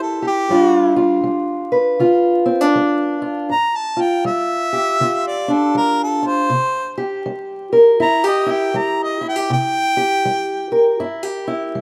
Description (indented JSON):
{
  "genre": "acoustic country blues, solo or duo",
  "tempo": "80 BPM",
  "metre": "4/4",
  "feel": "swing 62% on 8ths",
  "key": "C mixolydian",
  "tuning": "A4 = 440 Hz",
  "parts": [
    { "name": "warm harmonica", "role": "melody", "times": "0.0-11.0 s", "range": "G4 to Bb5", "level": "-21 LUFS", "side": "equal", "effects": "none" },
    { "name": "fingerpicked steel-string acoustic guitar", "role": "accompaniment", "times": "0.0-11.8 s", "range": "G2 to B4", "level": "-19 LUFS", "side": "equal", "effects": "none" }
  ],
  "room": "light reverb, small room ambience",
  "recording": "rough home demo mix, vinyl crackle",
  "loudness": "-17 LUFS",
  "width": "mono",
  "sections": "0.0-11.8 A section",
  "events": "harmonica solo 0.0-11.8",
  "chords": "0.5 G7; 6.5 C7"
}